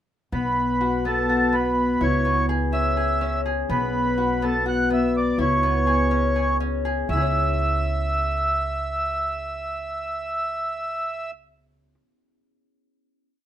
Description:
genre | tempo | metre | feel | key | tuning
contemporary instrumental, chamber music in an uneven meter | 247 BPM (eighths) | 7/8 | straight | C# minor | A4 = 439 Hz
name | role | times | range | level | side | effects
mellow accordion | melody | 0.3-11.3 s | A4 to F#5 | -24 LUFS | right 1 dB | none
concert harp | arpeggios | 0.3-12.1 s | B3 to C#5 | -24 LUFS | left 3 dB | none
upright bass | bass | 0.3-11.9 s | B1 to C#2 | -27 LUFS | right 1 dB | none
room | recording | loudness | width
light reverb | minimal, uncompressed stereo recording | -20 LUFS | side -10 dB against mid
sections
0.3-7.1 A section; 7.1-10.5 final chord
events
none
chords
0.3 B5; 2.0 C#m7; 3.7 B5; 5.4 C#m7; 7.1 C#m

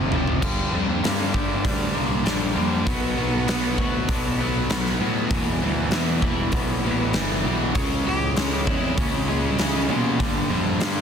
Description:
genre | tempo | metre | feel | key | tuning
quiet-loud alternative rock | 98 BPM | 4/4 | straight | unclear | A4 = 440 Hz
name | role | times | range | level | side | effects
biting overdriven guitar | riff | 0.0-11.0 s | E2 to C#4 | -25 LUFS | equal | none
fuzz picked electric bass | bass | 0.0-11.0 s | E1 to B2 | -27 LUFS | equal | overdrive
huge arena drum kit | drums | 0.1-11.0 s | crash cymbal, hi-hat, kick drum, snare drum, toms | -25 LUFS | equal | none
twangy electric guitar | arpeggios | 0.4-11.0 s | E2 to G4 | -32 LUFS | left 5 dB | lush chorus, slapback echo
rich cello | melody | 0.7-10.5 s | Bb2 to G4 | -29 LUFS | equal | slapback echo
room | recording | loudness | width
small room ambience | dense, heavily limited modern master | -20 LUFS | side -7 dB against mid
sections
0.4-11.0 A section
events
drum fill 0.0-0.4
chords
0.4 Gm; 2.9 Bm; 5.3 Em; 7.8 C#m; 10.2 Gm

